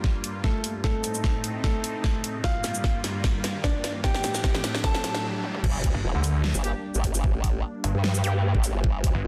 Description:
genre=heavy wobble dubstep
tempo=150 BPM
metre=4/4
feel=swing 53% on 16ths, half-time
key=G minor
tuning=A4 = 439 Hz
part: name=supersaw pad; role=sustained chords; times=0.0-9.3 s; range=G2 to G4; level=-36 LUFS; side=equal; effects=phaser, sidechain pumping, low-pass filter
part: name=dubstep drum kit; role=drums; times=0.0-9.1 s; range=crash cymbal, hi-hat, shaker, snare drum, toms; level=-33 LUFS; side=equal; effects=high-pass filter on hats, studio reverb, high-pass filter on snare, high-pass filter on perc, high-pass filter on toms, high-pass filter on cymbals
part: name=electronic kick drum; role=drums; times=0.0-9.1 s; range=none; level=-28 LUFS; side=equal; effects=studio reverb
part: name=riser, impact and zap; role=sound effects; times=1.8-8.3 s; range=none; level=-41 LUFS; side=equal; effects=none
part: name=warm grand piano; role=melody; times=0.4-5.2 s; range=A3 to A5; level=-35 LUFS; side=equal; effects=digital delay
part: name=formant-sweep wobble bass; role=bass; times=5.6-9.3 s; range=F1 to G2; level=-28 LUFS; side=equal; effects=chorus, overdrive
part: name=snarling distorted saw bass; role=bass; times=5.9-9.2 s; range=G1 to D2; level=-27 LUFS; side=equal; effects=distortion, overdrive
part: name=clear brass ensemble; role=stabs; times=6.6-8.3 s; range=Bb3 to G4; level=-39 LUFS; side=equal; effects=digital delay
room=light reverb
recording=dense, heavily limited modern master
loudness=-26 LUFS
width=mono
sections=0.0-5.6 A section; 5.6-9.3 B section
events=build-up 0.0-5.6; drum fill 0.0-5.2, 5.4; break 5.2-5.6; drop 5.6-9.3; impact 5.6-7.2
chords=0.0 Gm7; 0.8 Adim; 2.4 Gm7; 4.0 Dsus4/A; 5.6 Gm

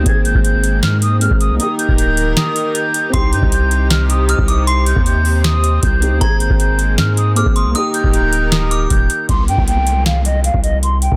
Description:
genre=hip hop, trap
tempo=156 BPM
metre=4/4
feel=half-time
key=C minor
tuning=A4 = 440 Hz
part: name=concert flute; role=melody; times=0.0-11.2 s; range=Eb5 to C7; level=-22 LUFS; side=equal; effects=low-pass filter, digital delay
part: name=dark grand piano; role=accompaniment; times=0.0-9.3 s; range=Bb3 to Ab4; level=-25 LUFS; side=equal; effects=low-pass filter
part: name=rich symphonic string section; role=sustained chords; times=0.0-9.3 s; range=C3 to Bb4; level=-26 LUFS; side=equal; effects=none
part: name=long sustained 808-style bass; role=bass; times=0.0-11.2 s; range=D1 to Ab2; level=-18 LUFS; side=equal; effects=none
part: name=downlifter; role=sound effects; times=0.0-0.1, 9.3-11.2 s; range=none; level=-31 LUFS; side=equal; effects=none
part: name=booming analog drum machine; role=drums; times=0.1-11.2 s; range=hi-hat, kick drum, snare drum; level=-19 LUFS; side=equal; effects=none
part: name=delicate synth tine bell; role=second line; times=3.1-8.9 s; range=Bb5 to Eb6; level=-27 LUFS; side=equal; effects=chorus, digital delay
room=little or no reverb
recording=dense, heavily limited modern master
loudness=-15 LUFS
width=mono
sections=0.0-9.3 A section; 9.3-11.2 B section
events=kick muted 2.4-3.1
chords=0.1 Abadd9; 1.6 Eb; 3.1 Cm; 6.2 Abadd9; 7.8 Eb; 9.3 C5

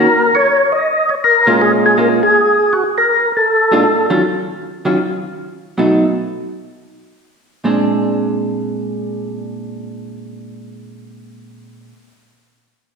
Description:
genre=jazz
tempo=112-160 BPM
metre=4/4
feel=swing 66% on 8ths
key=unclear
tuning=A4 = 443 Hz
part: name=percussive tonewheel organ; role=melody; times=0.0-4.1 s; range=Gb4 to Eb5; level=-12 LUFS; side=left 1 dB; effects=slow rotary speaker, overdrive, chorus vibrato
part: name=vintage hollow-body jazz guitar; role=accompaniment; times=0.0-11.9 s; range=Bb2 to F4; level=-17 LUFS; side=right 1 dB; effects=none
room=wet scoring stage reverb, RT60 1.6 s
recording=recorded in a church or concert hall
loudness=-12 LUFS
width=side -5 dB against mid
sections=0.0-4.2 A section; 4.2-7.7 B section; 7.7-11.9 C section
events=slowing down 4.2-7.7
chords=0.0 Eb7(no3); 1.2 Bbm7; 3.5 Bb7; 4.2 Ebm9; 5.8 B7; 7.7 Bb9

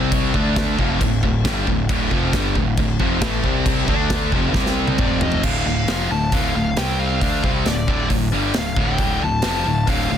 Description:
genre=heavy metal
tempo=135 BPM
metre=4/4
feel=straight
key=D minor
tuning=A4 = 440 Hz
part: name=crunchy overdriven guitar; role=riff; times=0.0-5.4 s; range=D2 to D4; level=-25 LUFS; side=equal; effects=none
part: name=heavy high-gain guitar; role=riff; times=0.0-10.2 s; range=D2 to D4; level=-24 LUFS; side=left 10 dB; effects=distortion
part: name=scooped high-gain guitar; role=riff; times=0.0-10.2 s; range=D2 to D4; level=-25 LUFS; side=right 13 dB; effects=distortion
part: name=fuzz picked electric bass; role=bass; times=0.0-10.2 s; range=D1 to D2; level=-24 LUFS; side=equal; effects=overdrive
part: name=big rock drum kit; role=drums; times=0.1-10.0 s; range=crash cymbal, hi-hat, kick drum, snare drum, toms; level=-22 LUFS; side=equal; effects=none
part: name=dark smooth lead guitar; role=melody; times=5.0-10.2 s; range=D5 to A5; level=-25 LUFS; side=left 2 dB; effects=overdrive, digital delay
room=little or no reverb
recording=dense, heavily limited modern master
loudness=-17 LUFS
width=side -9 dB against mid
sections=0.0-5.4 A section; 5.4-10.2 B section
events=drum fill 4.6-5.4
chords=0.3 Dm; 3.4 C5; 3.9 Dm; 4.6 C5; 5.0 F5; 5.4 Dm; 6.8 C5; 7.2 Dm

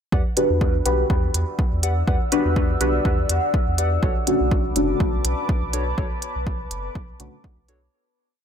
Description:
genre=dub techno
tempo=123 BPM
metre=4/4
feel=swing 55% on 16ths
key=E dorian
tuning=A4 = 440 Hz
part: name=deep dark ambient pad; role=sustained chords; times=1.5-7.9 s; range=B4 to E6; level=-28 LUFS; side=equal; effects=chorus, built-in reverb, sidechain pumping
part: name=warbly lo-fi synth keys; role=riff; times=0.1-7.8 s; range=D4 to F#5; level=-33 LUFS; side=left 2 dB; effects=chorus, sidechain pumping, dub echo
part: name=soft dub sub bass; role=bass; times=0.1-7.9 s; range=F#1 to E2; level=-24 LUFS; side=equal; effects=sidechain pumping
part: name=electronic kick drum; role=drums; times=0.1-7.5 s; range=none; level=-23 LUFS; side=equal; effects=none
part: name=deep mellow chord stab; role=stabs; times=0.4-7.3 s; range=A3 to B4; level=-23 LUFS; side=left 1 dB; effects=chorus, phaser, sidechain pumping, dub echo
part: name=electronic hi-hat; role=drums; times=0.4-7.8 s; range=none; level=-22 LUFS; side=right 2 dB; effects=none
room=light reverb, digital ambience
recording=none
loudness=-19 LUFS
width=side -8 dB against mid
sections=0.1-7.9 groove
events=fade-out 5.3-7.9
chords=0.1 Em9; 4.0 Bm9

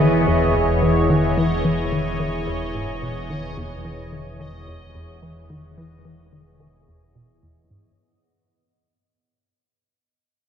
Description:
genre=ambient, sequencer-driven space music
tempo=109 BPM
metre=4/4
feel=straight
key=E major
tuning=A4 = 440 Hz
part: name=lush unison pad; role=sustained chords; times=0.0-7.9 s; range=E3 to C#5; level=-22 LUFS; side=equal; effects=chorus
part: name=resonant blip pluck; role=riff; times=0.0-8.0 s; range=E2 to E3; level=-24 LUFS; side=left 1 dB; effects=phaser, ping-pong delay
part: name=fat analog bass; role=bass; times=0.0-8.0 s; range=E1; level=-29 LUFS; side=right 1 dB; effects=none
part: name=bubbling stepped-filter texture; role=texture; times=0.0-8.0 s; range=B3 to D#5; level=-28 LUFS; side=equal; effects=chorus, built-in reverb
room=wet plate reverb, RT60 3.3 s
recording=echo-heavy mix, cassette tape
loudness=-18 LUFS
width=side -8 dB against mid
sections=0.0-8.0 A section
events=fade-out 0.0-8.0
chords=0.0 Emaj7

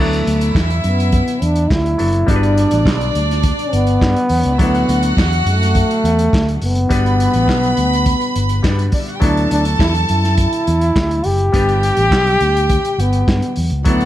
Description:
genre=disco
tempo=104 BPM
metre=4/4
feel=straight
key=unclear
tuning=A4 = 443 Hz
part: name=breathy trombone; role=melody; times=0.0-14.1 s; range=A3 to G4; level=-18 LUFS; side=equal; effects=tape echo
part: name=warm studio violin section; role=second line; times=0.0-14.1 s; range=B3 to B5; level=-23 LUFS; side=right 1 dB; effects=none
part: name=mellow clav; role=accompaniment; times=0.0-14.1 s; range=F#3 to B4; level=-25 LUFS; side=left 1 dB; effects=none
part: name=fingered electric bass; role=bass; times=0.0-14.1 s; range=F#1 to G2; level=-17 LUFS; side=equal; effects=none
part: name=vintage drum kit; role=drums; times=0.1-14.1 s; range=handclaps, hi-hat, kick drum, snare drum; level=-19 LUFS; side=equal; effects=none
room=little or no reverb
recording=dark, warm production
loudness=-13 LUFS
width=side -13 dB against mid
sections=0.0-14.1 A section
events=none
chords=0.0 D69; 2.3 Gmaj7; 4.6 D69; 6.9 Gmaj7; 9.2 D69; 11.5 G

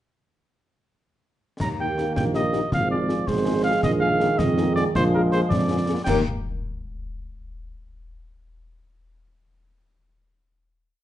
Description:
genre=military-style march for wind band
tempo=108 BPM (dotted quarters)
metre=6/8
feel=straight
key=Eb major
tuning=A4 = 441 Hz
part: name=warm cornet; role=melody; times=1.6-6.2 s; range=Bb4 to Bb5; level=-26 LUFS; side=equal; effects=none
part: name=warm euphonium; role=second line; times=1.6-5.8 s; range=D4 to Ab4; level=-28 LUFS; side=right 4 dB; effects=none
part: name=warm trombone section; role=sustained chords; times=1.6-6.2 s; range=Eb3 to Bb3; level=-28 LUFS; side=right 1 dB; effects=none
part: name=mellow tuba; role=bass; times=1.6-6.2 s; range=Ab1 to F2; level=-25 LUFS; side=right 2 dB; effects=none
part: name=concert snare drum, clash cymbals and concert bass drum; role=drums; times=1.6-6.3 s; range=none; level=-28 LUFS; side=left 2 dB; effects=none
part: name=warm French horn section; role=accompaniment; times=1.8-6.2 s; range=Bb3 to Bb4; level=-29 LUFS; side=left 5 dB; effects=none
room=moderate large studio reverb, RT60 0.9 s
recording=nothing above 10.4 kHz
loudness=-20 LUFS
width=side -12 dB against mid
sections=1.6-6.1 A section; 6.1-7.2 final chord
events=none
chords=1.6 Eb; 2.7 Fm/Ab; 3.8 Bb7sus4; 4.9 Bb7; 6.1 Eb5

